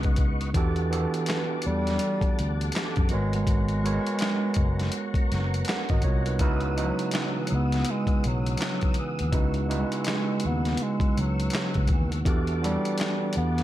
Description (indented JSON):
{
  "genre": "R&B, neo-soul",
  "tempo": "82 BPM",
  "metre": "4/4",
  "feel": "swing 61% on 16ths",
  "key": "unclear",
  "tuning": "A4 = 437 Hz",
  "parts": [
    { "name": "mellow bass clarinet", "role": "melody", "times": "0.0-13.6 s", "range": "D#3 to B3", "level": "-30 LUFS", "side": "equal", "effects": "none" },
    { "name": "overdriven tine electric piano", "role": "accompaniment", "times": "0.0-13.6 s", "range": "C#3 to F#5", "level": "-31 LUFS", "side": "right 4 dB", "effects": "none" },
    { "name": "tonewheel organ", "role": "sustained chords", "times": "0.0-13.6 s", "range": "B3 to E6", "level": "-36 LUFS", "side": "left 1 dB", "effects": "slow rotary speaker, chorus vibrato" },
    { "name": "fingered electric bass", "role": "bass", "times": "0.0-13.6 s", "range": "F#1 to F#2", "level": "-27 LUFS", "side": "left 1 dB", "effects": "none" },
    { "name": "boom bap sampler-style drum kit", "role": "drums", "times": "0.0-13.6 s", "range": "handclaps, hi-hat, kick drum, snare drum", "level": "-28 LUFS", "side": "left 1 dB", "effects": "none" }
  ],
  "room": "little or no reverb",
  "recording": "dark, warm production",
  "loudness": "-23 LUFS",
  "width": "side -14 dB against mid",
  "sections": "0.0-13.6 A section",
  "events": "none",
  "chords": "0.0 C#m11; 0.5 Em11; 3.1 G#m11; 6.4 C#m11; 12.3 Em11",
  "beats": "| 0.54 1.27 2.01 2.74 | 3.47 4.20 4.93 5.67 | 6.40 7.13 7.86 8.59 | 9.32 10.06 10.79 11.52 | 12.25 12.98"
}